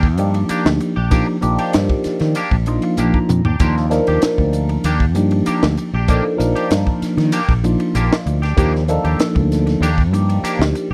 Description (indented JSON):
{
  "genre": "electric jazz fusion",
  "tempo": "96 BPM",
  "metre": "4/4",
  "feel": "straight",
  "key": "Eb lydian",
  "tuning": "A4 = 439 Hz",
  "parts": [
    { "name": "clean electric guitar", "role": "stabs", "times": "0.0-10.9 s", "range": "Bb3 to G4", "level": "-27 LUFS", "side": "equal", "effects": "analog chorus" },
    { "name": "fretless electric bass", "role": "bass", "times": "0.0-10.9 s", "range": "Bb1 to Eb3", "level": "-20 LUFS", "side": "equal", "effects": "none" },
    { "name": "crisp fusion drum kit", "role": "drums", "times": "0.0-10.9 s", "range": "hi-hat, kick drum, ride cymbal, snare drum, toms", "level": "-22 LUFS", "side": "equal", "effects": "none" },
    { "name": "tine electric piano", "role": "accompaniment", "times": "0.2-10.9 s", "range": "F3 to Bb5", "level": "-22 LUFS", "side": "equal", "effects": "phaser" }
  ],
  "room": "small room ambience",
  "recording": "none",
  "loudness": "-17 LUFS",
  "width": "mono",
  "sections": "0.0-10.9 A section",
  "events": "tine electric piano fill 2.4-3.6; drum fill 3.0-3.6",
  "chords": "0.0 Ebmaj7"
}